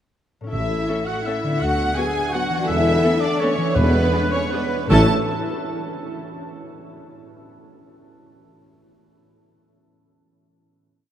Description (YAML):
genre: classical, orchestral ballroom waltz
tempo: 147-180 BPM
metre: 3/4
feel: rubato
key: A major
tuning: A4 = 442 Hz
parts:
  - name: concert harp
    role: arpeggios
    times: 0.4-5.1 s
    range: A2 to E5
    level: -26 LUFS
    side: left 2 dB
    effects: none
  - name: rich chamber violin section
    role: melody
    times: 0.5-5.1 s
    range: B4 to A5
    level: -30 LUFS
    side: equal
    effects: none
  - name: mellow large flute ensemble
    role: second line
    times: 0.5-5.1 s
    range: B4 to A5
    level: -30 LUFS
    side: equal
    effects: none
  - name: mellow oboe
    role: second line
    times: 0.5-5.1 s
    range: A4 to G#5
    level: -30 LUFS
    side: right 2 dB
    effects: none
  - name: rich chamber violin section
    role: second line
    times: 0.5-5.1 s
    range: B4 to A5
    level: -29 LUFS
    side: right 1 dB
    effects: none
  - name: rich symphonic double bass section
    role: bass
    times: 0.5-5.1 s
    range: A1 to E2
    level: -26 LUFS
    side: equal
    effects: none
  - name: warm chamber cello section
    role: bass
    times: 0.5-5.1 s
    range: A3 to G#4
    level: -26 LUFS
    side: equal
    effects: none
  - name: warm tuba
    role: bass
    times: 0.5-5.1 s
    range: E1 to D2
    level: -24 LUFS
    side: equal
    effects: none
  - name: timpani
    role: percussion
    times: 0.5-1.0, 3.8-5.1 s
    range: E2 to A2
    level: -26 LUFS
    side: right 1 dB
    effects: none
  - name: clear symphonic viola section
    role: accompaniment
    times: 0.9-5.1 s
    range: B3 to A4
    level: -30 LUFS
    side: equal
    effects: none
  - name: mellow French horn section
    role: sustained chords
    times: 0.9-5.1 s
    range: F#3 to E4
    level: -30 LUFS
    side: equal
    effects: none
room: wet cathedral reverb, RT60 5.7 s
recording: in a vast, echoing space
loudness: -18 LUFS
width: side -10 dB against mid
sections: 0.5-4.9 A section; 4.9-6.1 final chord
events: slowing down 2.2-4.9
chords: 0.5 A; 1.6 Bm/D; 2.7 E7sus4; 3.8 E7; 4.9 A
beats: | 0.53 0.89 1.26 | 1.62 1.97 2.33 | 2.68 3.03 3.40 | 3.76 4.13 4.52 | 4.90